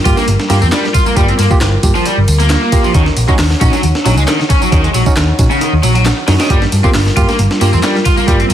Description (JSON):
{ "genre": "breakbeat, breaks", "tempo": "135 BPM", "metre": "4/4", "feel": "swing 53% on 16ths", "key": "G minor", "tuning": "A4 = 440 Hz", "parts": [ { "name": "dark analog pad", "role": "sustained chords", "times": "0.0-8.5 s", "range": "G3 to Gb5", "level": "-22 LUFS", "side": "equal", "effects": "chorus, sidechain pumping" }, { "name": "raw garage guitar", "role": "riff", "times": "0.1-8.5 s", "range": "Db3 to F4", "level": "-16 LUFS", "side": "equal", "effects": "overdrive, vintage 12-bit sampler grit, tape echo" }, { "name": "overdriven tine electric piano", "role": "stabs", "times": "0.1-8.4 s", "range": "Bb3 to G4", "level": "-20 LUFS", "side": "right 3 dB", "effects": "tape echo" }, { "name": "hollow-body short-scale picked electric bass", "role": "bass", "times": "0.1-8.5 s", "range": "G1 to G2", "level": "-13 LUFS", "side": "equal", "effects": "none" }, { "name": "breakbeat sampler-style drum kit", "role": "drums", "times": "0.1-8.5 s", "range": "hi-hat, kick drum, snare drum", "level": "-14 LUFS", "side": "equal", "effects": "studio ambience" }, { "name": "punchy analog drum machine", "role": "drums", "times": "0.1-8.5 s", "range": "handclaps, ride cymbal, tambourine", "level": "-23 LUFS", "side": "equal", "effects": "overdrive, studio ambience" } ], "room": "light reverb", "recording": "dense, heavily limited modern master, vinyl crackle", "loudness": "-9 LUFS", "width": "side -11 dB against mid", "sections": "0.0-8.5 A section", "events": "none", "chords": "0.0 Gm7; 2.9 Ebm7; 6.5 Gm7" }